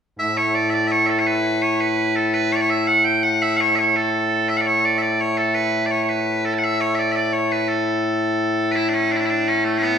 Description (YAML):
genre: scottish traditional, Scottish pipe music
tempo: 112 BPM (dotted quarters)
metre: 6/8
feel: straight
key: A major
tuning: A4 = 440 Hz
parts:
  - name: loud bright bagpipes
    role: solo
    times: 0.2-10.0 s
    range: A2 to A5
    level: -17 LUFS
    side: equal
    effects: none
room: wet recital hall reverb, RT60 1.6 s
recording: recorded in a church or concert hall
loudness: -17 LUFS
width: side -7 dB against mid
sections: 0.2-8.8 A section; 8.8-10.0 A section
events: none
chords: none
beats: | 0.19 0.73 | 1.27 1.80 | 2.34 2.87 | 3.41 3.94 | 4.48 5.02 | 5.55 6.09 | 6.62 7.16 | 7.69 8.23 | 8.77 9.30 | 9.84